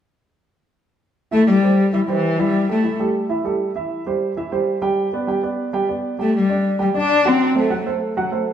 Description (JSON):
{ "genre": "latin", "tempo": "197 BPM", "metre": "4/4", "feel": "straight", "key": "C major", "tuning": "A4 = 440 Hz", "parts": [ { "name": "dark cello", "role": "melody", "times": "1.3-3.0, 6.2-7.9 s", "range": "E3 to D4", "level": "-17 LUFS", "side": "left 2 dB", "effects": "none" }, { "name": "warm baby grand piano", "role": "accompaniment", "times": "1.3-8.5 s", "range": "E3 to G5", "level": "-21 LUFS", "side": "right 3 dB", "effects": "none" } ], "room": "wet stone room reverb, RT60 1.2 s", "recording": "band playing live in one room", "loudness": "-17 LUFS", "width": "side -9 dB against mid", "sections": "1.3-8.5 A section", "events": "none", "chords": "1.3 C; 2.5 A5; 3.8 C; 5.0 G; 6.2 G5; 7.4 F#dim", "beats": "| 1.32 1.62 1.93 2.23 | 2.54 2.84 3.14 3.45 | 3.75 4.06 4.36 4.66 | 4.97 5.27 5.58 5.88 | 6.19 6.49 6.79 7.10 | 7.40 7.71 8.01 8.32" }